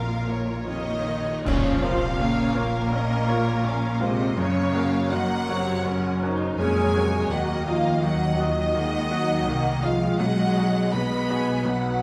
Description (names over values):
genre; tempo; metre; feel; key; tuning
cinematic, emotional film score for orchestra; 83 BPM; 4/4; rubato; Bb minor; A4 = 440 Hz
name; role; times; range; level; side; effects
warm symphonic violin section; melody; 0.0-12.0 s; Bb4 to Ab5; -36 LUFS; equal; none
rich studio violin section; second line; 0.0-12.0 s; Bb4 to B5; -34 LUFS; equal; none
bright baby grand piano; accompaniment; 0.0-12.0 s; Gb1 to F5; -31 LUFS; equal; none
warm symphonic viola section; accompaniment; 0.0-12.0 s; C3 to F4; -33 LUFS; equal; none
mellow French horn section; sustained chords; 0.0-0.7 s; Bb3; -42 LUFS; equal; none
rich studio cello section; bass; 0.0-12.0 s; Bb2 to B3; -32 LUFS; equal; none
warm symphonic double bass section; bass; 0.0-12.0 s; Bb1 to Gb2; -30 LUFS; equal; none
mellow wooden-headed alto flute; melody; 0.7-12.0 s; Bb3 to B4; -31 LUFS; equal; none
clash cymbals and concert bass drum; percussion; 1.5-2.9 s; none; -34 LUFS; equal; none
room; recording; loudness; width
wet concert hall reverb, RT60 2.0 s; vinyl crackle; -24 LUFS; mono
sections
0.0-1.5 A section; 1.5-12.0 B section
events
band accent 1.5-2.2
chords
0.0 Bbm; 4.4 Gb; 7.3 Ebmadd9; 10.2 B